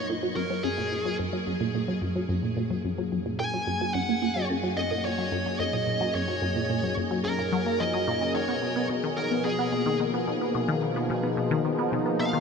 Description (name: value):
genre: ambient, sequencer-driven space music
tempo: 109 BPM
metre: 4/4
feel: straight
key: F# major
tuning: A4 = 439 Hz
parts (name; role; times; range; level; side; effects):
- high-gain lead guitar; melody; 0.0-12.4 s; G#4 to G#5; -30 LUFS; equal; distortion, shimmer reverb, ping-pong delay
- sweeping resonant pad; sustained chords; 0.0-12.4 s; F#2 to G#4; -31 LUFS; left 1 dB; chorus, shimmer reverb
- resonant blip pluck; riff; 0.1-12.4 s; F#2 to B3; -28 LUFS; equal; phaser, shimmer reverb, ping-pong delay
room: wet huge ambient reverb, RT60 7.2 s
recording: none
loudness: -25 LUFS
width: side -5 dB against mid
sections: 0.0-12.4 A section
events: fade-in on analog synth pad 0.0-12.4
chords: 0.0 F#add9; 8.3 B